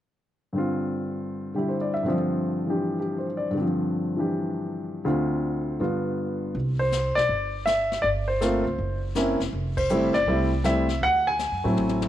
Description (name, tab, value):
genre	jazz piano trio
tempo	161 BPM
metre	4/4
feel	swing 66% on 8ths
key	unclear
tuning	A4 = 442 Hz
part	warm baby grand piano	melody	0.5-12.1 s	D2 to Ab5	-24 LUFS	equal	none
part	upright bass	bass	6.5-12.1 s	E1 to A2	-28 LUFS	right 1 dB	none
part	jazz brush drum kit	drums	6.5-12.1 s	brushed snare drum, hi-hat, kick drum, ride cymbal, snare drum, toms	-36 LUFS	left 6 dB	none
room	light reverb, small room ambience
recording	1960s-style stereo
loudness	-23 LUFS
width	side -12 dB against mid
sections	0.5-6.5 A section; 6.5-12.1 B section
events	band accent 9.7; drum fill 11.8-12.1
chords	0.5 G7sus4; 5.0 Dm7; 5.8 G7; 6.5 Cadd9; 8.0 Gm11; 8.8 F#7#11; 9.5 Fmaj9; 11.0 D9